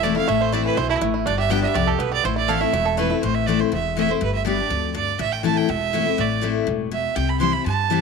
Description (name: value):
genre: bluegrass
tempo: 244 BPM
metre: 4/4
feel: straight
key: A minor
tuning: A4 = 439 Hz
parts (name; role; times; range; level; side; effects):
- bluegrass banjo; melody; 0.0-3.2 s; E3 to A4; -26 LUFS; right 10 dB; none
- clear fiddle; melody; 0.0-8.0 s; E4 to C6; -23 LUFS; right 10 dB; none
- picked steel-string acoustic guitar; accompaniment; 0.0-8.0 s; E2 to G4; -22 LUFS; left 10 dB; none
- upright bass; bass; 0.0-8.0 s; E1 to G2; -27 LUFS; right 1 dB; none
room: moderate spring reverb, RT60 1.4 s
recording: 1960s-style stereo with parts hard left and right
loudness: -19 LUFS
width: side -5 dB against mid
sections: 0.0-3.2 A section; 3.2-8.0 B section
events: fiddle solo 0.0-3.2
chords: 0.0 Am; 1.3 G; 2.2 Am; 4.2 G; 5.2 Am; 7.2 C